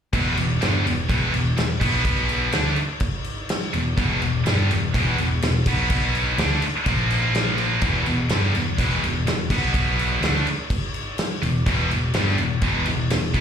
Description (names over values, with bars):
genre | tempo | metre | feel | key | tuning
hard rock | 125 BPM | 4/4 | straight | E minor | A4 = 437 Hz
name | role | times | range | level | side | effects
scooped high-gain guitar | riff | 0.1-13.4 s | E2 to D4 | -22 LUFS | equal | distortion, slapback echo
hollow-body short-scale picked electric bass | bass | 0.1-13.4 s | E1 to D2 | -24 LUFS | equal | none
big rock drum kit | drums | 0.1-13.4 s | crash cymbal, kick drum, snare drum | -25 LUFS | equal | none
room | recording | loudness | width
little or no reverb | live gig heard through the venue's PA, club reverb | -19 LUFS | side -8 dB against mid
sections
0.1-13.4 A section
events
none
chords
0.1 Em; 1.8 B5; 2.5 Em; 5.7 B5; 6.4 D5; 6.9 A#5; 7.8 Em; 9.5 B5; 10.2 Em